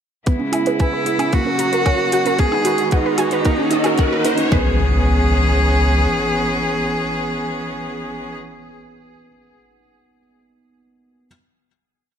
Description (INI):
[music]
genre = piano and strings electronica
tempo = 113 BPM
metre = 4/4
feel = straight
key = C# dorian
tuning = A4 = 440 Hz
[part]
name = clear string quartet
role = sustained chords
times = 0.3-8.4 s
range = C#3 to G#4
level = -24 LUFS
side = left 1 dB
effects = sidechain pumping, low-pass filter
[part]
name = wide unison pluck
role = arpeggios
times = 0.3-4.8 s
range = A#4 to A#5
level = -26 LUFS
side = right 4 dB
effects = sidechain pumping, ping-pong delay
[part]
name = felt-muted upright piano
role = riff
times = 0.3-11.3 s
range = A#3 to C#5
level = -22 LUFS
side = right 2 dB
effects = ping-pong delay
[part]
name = electronic hi-hat and woodblock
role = drums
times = 0.3-4.5 s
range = none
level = -28 LUFS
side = right 1 dB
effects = high-pass filter on hats, high-pass filter on perc
[part]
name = electronic kick drum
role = drums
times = 0.3-4.6 s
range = none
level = -18 LUFS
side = left 1 dB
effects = none
[part]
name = riser and impact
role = sound effects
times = 2.0-8.4 s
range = none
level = -26 LUFS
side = left 1 dB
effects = none
[part]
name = warm sub bass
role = bass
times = 0.5-6.1 s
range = C#2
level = -17 LUFS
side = equal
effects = tube saturation, sidechain pumping, high-pass filter
[part]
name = rich cello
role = melody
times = 0.8-8.4 s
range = D#4 to G#4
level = -22 LUFS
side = equal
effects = ping-pong delay
[sound]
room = moderate scoring stage reverb, RT60 1.7 s, digital ambience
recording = none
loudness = -15 LUFS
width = side -8 dB against mid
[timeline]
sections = 0.3-4.5 build; 4.5-8.8 final chord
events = build-up 0.3-4.5; filter sweep on synth arpeggio sound 0.3-4.5; riser 2.0-4.5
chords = 0.3 C#m7; 1.3 F#; 2.4 G#m7; 3.5 D#m7; 4.5 C#m7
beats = | 0.27 0.80 1.33 1.86 | 2.39 2.92 3.45 3.98 | 4.51 5.04 5.58 6.11 | 6.64 7.17 7.70 8.23